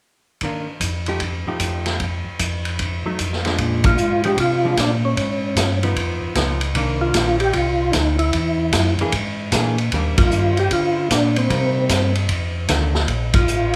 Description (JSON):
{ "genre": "soul jazz organ trio", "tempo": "152 BPM", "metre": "4/4", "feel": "swing 65% on 8ths", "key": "Bb mixolydian", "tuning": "A4 = 437 Hz", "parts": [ { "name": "hollow-body jazz guitar", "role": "accompaniment", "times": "0.4-12.9 s", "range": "Eb3 to G#4", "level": "-29 LUFS", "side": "equal", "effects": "none" }, { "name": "vintage drum kit", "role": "drums", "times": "0.4-13.8 s", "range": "hi-hat, kick drum, ride cymbal, snare drum", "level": "-24 LUFS", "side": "equal", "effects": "none" }, { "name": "mellow tonewheel organ", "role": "bass", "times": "0.8-13.8 s", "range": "A1 to D3", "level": "-24 LUFS", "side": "equal", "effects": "slow rotary speaker" }, { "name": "percussive tonewheel organ", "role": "melody", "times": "3.9-13.8 s", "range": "C4 to G4", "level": "-22 LUFS", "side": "equal", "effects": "slow rotary speaker, overdrive, chorus vibrato" } ], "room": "moderate large studio reverb, RT60 1.3 s", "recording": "band playing live in one room", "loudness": "-20 LUFS", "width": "mono", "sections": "0.4-3.6 A section; 3.6-13.8 B section", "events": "band accent 3.8, 10.1, 13.3", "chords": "0.4 F13; 1.2 F9; 2.0 N.C.; 2.8 F13b9; 3.6 Bb7; 5.2 Db9; 6.8 Cm9; 8.3 E7#11; 9.9 Ebmaj7; 11.5 Cm7; 12.3 F6; 13.1 Bb5" }